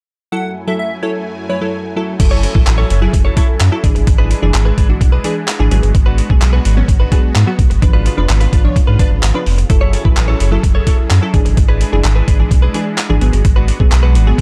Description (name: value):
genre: dance-pop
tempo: 128 BPM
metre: 4/4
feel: straight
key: F# minor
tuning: A4 = 443 Hz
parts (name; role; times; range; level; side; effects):
- plucky unison lead; melody; 0.3-1.8 s; C#5 to F#5; -26 LUFS; equal; sidechain pumping, tape echo
- wavetable chord stab; accompaniment; 0.3-14.4 s; E3 to C#5; -24 LUFS; equal; sidechain pumping
- supersaw pad; sustained chords; 0.3-14.4 s; F#2 to G#5; -28 LUFS; equal; phaser, sidechain pumping
- direct-recorded clean electric guitar; riff; 2.2-14.4 s; D4 to C#5; -26 LUFS; equal; analog chorus
- sub bass with octave; bass; 2.2-14.4 s; E#1 to G#2; -15 LUFS; equal; sidechain pumping
- boom bap sampler-style drum kit; drums; 2.2-14.4 s; crash cymbal, handclaps, hi-hat, kick drum; -16 LUFS; equal; none
- group handclap; percussion; 2.7-14.0 s; none; -30 LUFS; equal; none
room: little or no reverb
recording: dark, warm production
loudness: -13 LUFS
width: mono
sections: 0.3-2.2 A section; 2.2-14.4 B section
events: none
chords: 0.3 F#m7; 3.8 E7; 5.7 G#m7b5; 7.8 C#7b9; 9.7 F#m7; 11.3 E7; 13.2 G#m7b5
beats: | 0.32 0.79 1.26 1.73 | 2.20 2.67 3.14 3.60 | 4.07 4.54 5.01 5.48 | 5.95 6.42 6.89 7.35 | 7.82 8.29 8.76 9.23 | 9.70 10.17 10.64 11.10 | 11.57 12.04 12.51 12.98 | 13.45 13.92 14.39